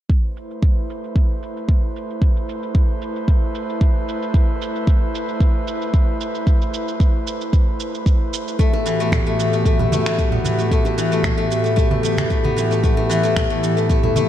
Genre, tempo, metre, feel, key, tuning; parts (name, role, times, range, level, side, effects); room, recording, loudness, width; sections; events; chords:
organic downtempo; 113 BPM; 4/4; swing 53% on 16ths; A dorian; A4 = 441 Hz
airy breathy pad; sustained chords; 0.1-14.3 s; A2 to C5; -23 LUFS; right 1 dB; chorus, sidechain pumping
electronic kick drum; drums; 0.1-14.0 s; -17 LUFS; equal
electronic shaker and finger snaps; drums; 0.1-14.3 s; -30 LUFS; right 3 dB; low-pass filter on perc, low-pass filter on snare
steel-string zither; arpeggios; 8.6-14.3 s; E3 to B3; -20 LUFS; left 3 dB; ping-pong delay
bongos and congas; percussion; 8.7-14.3 s; -26 LUFS; right 3 dB
moderate recital hall reverb, RT60 1.7 s, studio reverb; dark, warm production; -17 LUFS; side -12 dB against mid
0.1-14.3 A section
0.1 Amadd9; 8.6 Em/A